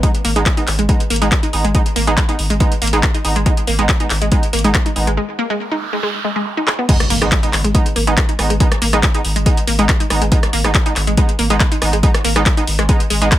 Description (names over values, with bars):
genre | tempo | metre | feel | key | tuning
driving peak-time techno | 140 BPM | 4/4 | straight | G# minor | A4 = 440 Hz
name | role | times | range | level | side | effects
wide unison pluck | riff | 0.0-13.3 s | G#3 to G#4 | -20 LUFS | equal | overdrive, sidechain pumping, digital delay
sync-sweep polysynth | stabs | 0.0-13.3 s | G#3 to D#4 | -22 LUFS | right 3 dB | chorus, sidechain pumping, tape echo
saturated sub bass | bass | 0.0-13.3 s | G#1 | -20 LUFS | equal | overdrive, sidechain pumping, low-pass filter
electronic kick drum | drums | 0.0-13.4 s | none | -15 LUFS | equal | overdrive
techno drum kit | drums | 0.0-13.4 s | crash cymbal, handclaps, hi-hat, rim click | -20 LUFS | left 1 dB | none
noise sweep and impact | sound effects | 5.6-8.6 s | none | -26 LUFS | right 2 dB | none
room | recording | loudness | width
light reverb, digital ambience | none | -13 LUFS | side -13 dB against mid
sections
0.0-6.9 A section; 6.9-13.4 B section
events
break 5.2-6.9; noise sweep 5.6-6.9; drum fill 6.7; drop 6.9-13.4; impact 6.9-8.6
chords
0.0 G#m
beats
| 0.03 0.46 0.89 1.32 | 1.75 2.17 2.60 3.03 | 3.46 3.89 4.32 4.75 | 5.17 5.60 6.03 6.46 | 6.89 7.32 7.75 8.17 | 8.60 9.03 9.46 9.89 | 10.32 10.75 11.17 11.60 | 12.03 12.46 12.89 13.32